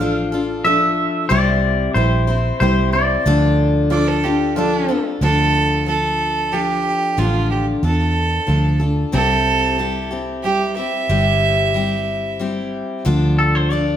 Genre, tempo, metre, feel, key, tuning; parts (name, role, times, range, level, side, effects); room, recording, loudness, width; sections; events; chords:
honky-tonk and classic country; 92 BPM; 3/4; straight; D minor; A4 = 439 Hz
twangy electric guitar; melody; 0.0-4.5, 13.4-14.0 s; A4 to F5; -19 LUFS; left 2 dB
picked steel-string acoustic guitar; accompaniment; 0.0-14.0 s; C3 to C5; -21 LUFS; left 4 dB
warm concert grand piano; accompaniment; 0.0-5.1 s; E4 to D5; -26 LUFS; right 5 dB
vintage muted fingered electric bass; bass; 0.0-14.0 s; G1 to E2; -19 LUFS; right 1 dB
clear fiddle; second line; 3.9-12.4 s; D4 to E5; -19 LUFS; right 3 dB
moderate large studio reverb, RT60 1.3 s; -15 LUFS; side -10 dB against mid
0.0-5.2 A section; 5.2-13.1 B section
fiddle solo 5.2-13.1
0.0 Dm; 1.3 C; 3.3 Dm; 9.1 C; 13.1 Dm